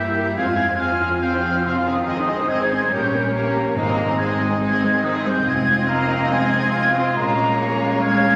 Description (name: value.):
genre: classical.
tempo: 141 BPM.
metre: 4/4.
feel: rubato.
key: unclear.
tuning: A4 = 440 Hz.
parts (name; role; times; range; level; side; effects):
warm symphonic violin section; melody; 0.0-8.4 s; G4 to F5; -32 LUFS; equal; none.
flute section; second line; 0.0-8.4 s; Bb5 to Ab6; -24 LUFS; equal; none.
rich symphonic violin section; second line; 0.0-8.4 s; Eb4 to C5; -33 LUFS; equal; none.
warm clarinet; second line; 0.0-8.4 s; C5 to Ab5; -28 LUFS; equal; none.
clear symphonic viola section; accompaniment; 0.0-8.4 s; Ab3 to G4; -28 LUFS; equal; none.
mellow French horn section; sustained chords; 0.0-8.4 s; Ab3 to Ab4; -29 LUFS; equal; none.
rich studio double bass section; bass; 0.0-8.4 s; F1 to G2; -31 LUFS; equal; none.
rich symphonic cello section; bass; 0.0-8.4 s; C3 to C4; -30 LUFS; equal; none.
timpani; percussion; 3.8-4.4 s; Ab2; -32 LUFS; equal; none.
room: wet concert hall reverb, RT60 1.8 s.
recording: none.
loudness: -20 LUFS.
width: mono.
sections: 0.0-8.4 A section.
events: none.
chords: 0.4 Fm; 2.1 Ab; 2.9 Gdim/Bb; 3.8 Ab; 5.5 Fm7; 7.2 Bbm7.